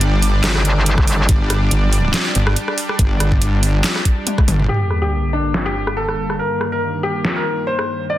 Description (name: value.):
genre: heavy wobble dubstep.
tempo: 141 BPM.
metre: 4/4.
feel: swing 55% on 16ths, half-time.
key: G minor.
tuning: A4 = 444 Hz.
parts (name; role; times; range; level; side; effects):
lush unison pad; sustained chords; 0.0-8.2 s; G2 to D5; -24 LUFS; equal; chorus, sidechain pumping.
wobble bass; bass; 0.0-4.7 s; G1; -16 LUFS; equal; chorus, overdrive.
dubstep drum kit; drums; 0.0-7.9 s; crash cymbal, handclaps, hi-hat, rim click, snare drum, toms; -21 LUFS; equal; low-pass filter on hats, low-pass filter on snare, low-pass filter on toms, low-pass filter on cymbals, low-pass filter on room.
metallic wobble bass; bass; 0.4-1.3 s; G1; -15 LUFS; equal; chorus, overdrive.
electronic kick drum; drums; 1.0-4.5 s; none; -15 LUFS; equal; none.
warm baby grand piano; melody; 4.7-8.2 s; D4 to D5; -21 LUFS; left 1 dB; dub echo.
sub drop; sound effects; 4.7-6.4 s; none; -22 LUFS; equal; none.
room: light reverb, digital ambience.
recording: dense, heavily limited modern master.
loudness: -15 LUFS.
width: side -13 dB against mid.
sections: 0.0-4.7 A section; 4.7-8.2 B section.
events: drop 0.0-4.7; drum fill 4.3-4.7; impact 4.7-6.4; filter sweep on drum 4.7-8.2; filter sweep on analog synth pad 4.7-8.2.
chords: 0.0 G5; 4.7 Gm; 6.4 Eb/G.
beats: 0.01 0.44 0.86 | 1.29 1.71 2.14 2.56 | 2.99 3.42 3.84 4.27 | 4.69 5.12 5.54 5.97 | 6.39 6.82 7.25 7.67 | 8.10.